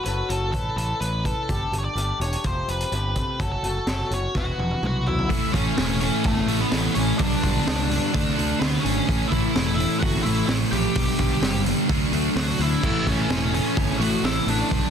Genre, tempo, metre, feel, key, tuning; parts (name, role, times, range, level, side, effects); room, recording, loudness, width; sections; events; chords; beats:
quiet-loud alternative rock; 127 BPM; 4/4; straight; A mixolydian from 5.3 s; A4 = 441 Hz
octave-fuzz lead guitar; melody; 0.0-14.9 s; A3 to G5; -28 LUFS; equal; distortion, slapback echo
picked swing-style acoustic guitar; arpeggios; 0.0-5.3 s; E3 to B4; -31 LUFS; left 4 dB
growling picked electric bass; bass; 0.1-14.9 s; E1 to D2; -27 LUFS; equal; overdrive
raw garage drum kit; drums; 0.1-14.8 s; crash cymbal, hi-hat, kick drum, snare drum, toms; -27 LUFS; equal
sludgy distorted guitar; riff; 5.3-14.9 s; G2 to D4; -27 LUFS; right 14 dB; overdrive
sludgy distorted guitar; riff; 5.3-14.9 s; A2 to E4; -29 LUFS; equal; overdrive
thick fuzz guitar; riff; 5.3-14.9 s; G2 to D4; -28 LUFS; left 13 dB; distortion
little or no reverb; dense, heavily limited modern master; -20 LUFS; side -7 dB against mid
0.0-5.3 A section; 5.3-14.9 B section
drum fill 4.4-5.3
0.0 F#m; 0.5 Aadd9; 1.5 Gsus2; 2.4 Fadd9; 3.4 F#m; 4.4 Esus2; 5.3 A; 7.2 G/B; 8.1 D; 9.1 A; 11.0 G/B; 11.9 D; 12.8 A
0.05 0.53 1.01 | 1.48 1.96 2.44 2.92 | 3.40 3.87 4.35 4.83 | 5.30 5.78 6.25 6.72 | 7.19 7.66 8.13 8.61 | 9.08 9.55 10.02 10.49 | 10.96 11.43 11.89 12.36 | 12.83 13.30 13.77 14.24 | 14.71